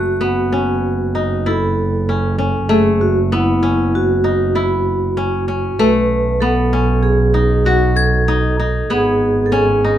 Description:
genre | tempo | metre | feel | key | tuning
contemporary instrumental, chamber music in an uneven meter | 97 BPM | 5/4 | straight | F# dorian | A4 = 440 Hz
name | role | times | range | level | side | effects
vibraphone with medium mallets | second line | 0.0-10.0 s | E4 to B4 | -18 LUFS | right 1 dB | none
kora | arpeggios | 0.0-10.0 s | A3 to F#4 | -18 LUFS | left 2 dB | none
muted double bass | bass | 0.0-10.0 s | F#1 to B1 | -18 LUFS | right 2 dB | none
glockenspiel with brass mallets | texture | 0.0-1.1, 8.0-9.1 s | F#6 to G#6 | -25 LUFS | left 4 dB | none
room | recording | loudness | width
little or no reverb | dark, warm production | -13 LUFS | side -11 dB against mid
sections
0.0-10.0 A section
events
none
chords
0.0 F#m7; 5.8 B7; 8.9 G#m7

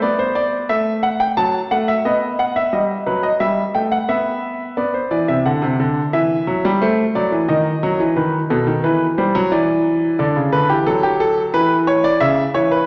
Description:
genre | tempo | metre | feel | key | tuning
classical, baroque-style two-part invention for grand piano | 89 BPM | 4/4 | straight | E minor from 4.8 s | A4 = 440 Hz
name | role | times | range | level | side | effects
warm grand piano | solo | 0.0-12.9 s | B2 to A5 | -18 LUFS | equal | none
room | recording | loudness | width
wet concert hall reverb, RT60 1.9 s | none | -18 LUFS | mono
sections
0.0-4.8 A section; 4.8-12.9 B section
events
none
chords
0.0 N.C.; 0.7 F#m7; 2.0 B; 3.4 Em/G; 4.8 E5; 6.1 F#m7b5/E; 7.5 B/D#; 8.8 E5; 10.2 Bm (rootless); 11.5 C#m7

